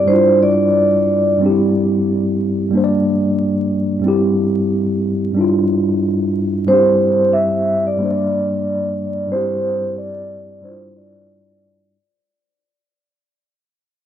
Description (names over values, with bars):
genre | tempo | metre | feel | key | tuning
hip hop, boom-bap hip-hop | 91 BPM | 4/4 | swing 59% on 16ths | unclear | A4 = 440 Hz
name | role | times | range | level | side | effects
vibraphone with soft mallets | melody | 0.0-1.4, 6.7-11.9 s | C5 to E5 | -16 LUFS | right 1 dB | high-pass filter, low-pass filter, tape echo
mellow tine electric piano | accompaniment | 0.0-12.0 s | G2 to D5 | -16 LUFS | equal | medium stereo tremolo, high-pass filter, low-pass filter
room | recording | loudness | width
light reverb, small room ambience | dry, gritty hardware recording, transformer saturation, vinyl crackle | -14 LUFS | side -10 dB against mid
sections
0.0-6.7 A section; 6.7-12.0 B section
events
fade-out 6.7-12.0; filter sweep 6.7-12.0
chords
0.1 Dmadd9/G; 1.4 C/G; 2.7 Gm; 4.0 C/G; 5.4 Dmadd9/G; 6.7 C/G; 8.0 Gm; 9.3 C/G; 10.6 Dmadd9/G